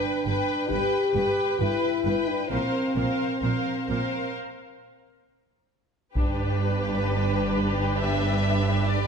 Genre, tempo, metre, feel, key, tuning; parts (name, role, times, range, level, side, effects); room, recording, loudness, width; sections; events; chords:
cinematic, epic orchestral film score; 66 BPM; 4/4; straight; G major; A4 = 444 Hz
warm symphonic violin section; melody; 0.0-9.1 s; B4 to G5; -33 LUFS; left 4 dB
rich symphonic violin section; second line; 0.0-9.1 s; G4 to C5; -32 LUFS; left 1 dB
rich symphonic viola section; accompaniment; 0.0-9.1 s; D4 to B4; -32 LUFS; right 1 dB
mellow French horn section; sustained chords; 0.0-9.1 s; C4 to G4; -28 LUFS; left 2 dB
rich symphonic cello section; bass; 0.3-9.1 s; G2 to Bb2; -30 LUFS; right 3 dB
warm symphonic double bass section; bass; 0.3-9.1 s; G1 to Bb1; -30 LUFS; right 3 dB
taiko ensemble; drums; 6.2-7.9 s; -26 LUFS; equal
moderate scoring stage reverb, RT60 1.8 s; -23 LUFS; side -6 dB against mid
0.0-6.2 A section; 6.2-9.1 A section
break 4.3-6.2
0.0 G; 2.5 Bbsus2; 6.2 G